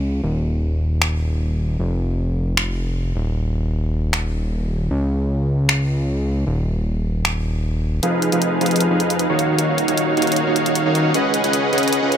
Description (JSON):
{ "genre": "future bass", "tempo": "154 BPM", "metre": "4/4", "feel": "half-time", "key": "unclear", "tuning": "A4 = 440 Hz", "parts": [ { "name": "fat analog bass", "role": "bass", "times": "0.0-12.2 s", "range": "Eb1 to Db2", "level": "-21 LUFS", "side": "equal", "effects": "high-pass filter" }, { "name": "big-room dance drum kit", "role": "drums", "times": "1.0-12.2 s", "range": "finger snaps, hi-hat", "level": "-24 LUFS", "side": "equal", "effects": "none" }, { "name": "supersaw chords", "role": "riff", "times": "8.0-12.2 s", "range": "Eb3 to Gb5", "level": "-16 LUFS", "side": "right 1 dB", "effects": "low-pass filter" } ], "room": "light reverb", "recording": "none", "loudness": "-17 LUFS", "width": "side -9 dB against mid", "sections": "0.0-8.0 A section; 8.0-12.2 B section", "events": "build-up 8.0-12.2; filter sweep on supersaw synth 8.0-12.2", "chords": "0.0 N.C.; 8.0 Fm7b5; 9.4 Ebm9; 11.1 Db7sus4" }